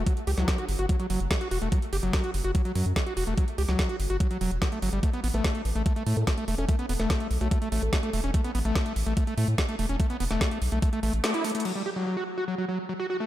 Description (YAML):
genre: psychedelic trance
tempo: 145 BPM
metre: 4/4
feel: straight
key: F# phrygian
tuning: A4 = 440 Hz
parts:
  - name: screaming distorted acid line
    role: riff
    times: 0.0-13.3 s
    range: F#3 to G4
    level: -30 LUFS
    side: equal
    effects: distortion, chorus, auto-pan, sidechain pumping, diffuse ambient delay
  - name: round analog bass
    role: bass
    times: 0.0-11.2 s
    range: E1 to A2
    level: -27 LUFS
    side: equal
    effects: tube saturation
  - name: electronic kick drum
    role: drums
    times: 0.1-10.9 s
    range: none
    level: -26 LUFS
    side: equal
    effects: overdrive
  - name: garage drum kit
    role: drums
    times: 0.1-11.7 s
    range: crash cymbal, hi-hat, snare drum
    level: -34 LUFS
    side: equal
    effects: overdrive
  - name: vowel-sweep wobble bass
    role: second line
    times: 0.4-0.7, 5.3-8.2 s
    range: E3 to B3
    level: -40 LUFS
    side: right 1 dB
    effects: chorus, sidechain pumping, high-pass filter, diffuse ambient delay
room: light reverb, digital ambience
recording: none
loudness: -25 LUFS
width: side -13 dB against mid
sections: 0.0-11.7 A section; 11.7-13.3 B section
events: band accent 11.2; drum fill 11.4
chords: 0.0 F#5; 5.0 A5; 11.7 F#5